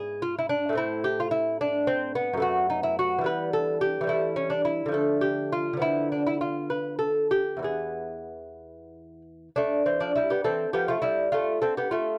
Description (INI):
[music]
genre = classical, baroque-style dance for lute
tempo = 61-73 BPM (dotted quarters)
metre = 6/8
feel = rubato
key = A minor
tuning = A4 = 439 Hz
[part]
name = lute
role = solo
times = 0.0-12.2 s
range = E2 to B4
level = -27 LUFS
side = equal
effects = none
[sound]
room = little or no reverb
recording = dry, close 1970s-style studio recording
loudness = -27 LUFS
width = mono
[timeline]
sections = 0.0-9.6 A section; 9.6-12.2 A section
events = none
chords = 0.0 G#dim7; 0.8 Am; 2.4 B5/F#; 3.3 Em; 4.1 A5/E; 5.0 Dm; 5.8 Bdim/D; 7.7 E; 9.6 Am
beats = | 0.78 1.61 | 2.44 3.27 | 4.11 4.95 | 5.83 6.71 | 7.65 8.62 | 9.56 10.44 | 11.32